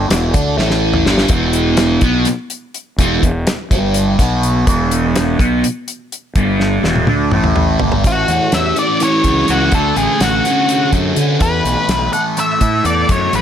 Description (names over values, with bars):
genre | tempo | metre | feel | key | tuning
psychedelic rock | 249 BPM (eighths) | 7/8 | straight | unclear | A4 = 435 Hz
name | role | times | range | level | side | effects
fuzz guitar | riff | 0.0-13.4 s | E2 to A4 | -16 LUFS | equal | distortion, phaser
fuzz fingered electric bass | bass | 0.0-13.4 s | E1 to D3 | -18 LUFS | equal | overdrive
damped 70s drum kit | drums | 0.1-13.4 s | hi-hat, kick drum, snare drum, toms | -17 LUFS | equal | none
octave-fuzz lead guitar | melody | 8.1-13.4 s | F#4 to F#5 | -16 LUFS | left 1 dB | distortion
room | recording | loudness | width
light reverb, studio ambience | none | -12 LUFS | side -9 dB against mid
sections
0.0-8.0 A section; 8.0-13.4 B section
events
drum fill 0.6-1.3, 6.6-8.0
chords
0.0 E5; 8.0 Amaj7; 9.7 Dmaj7; 11.4 Esus4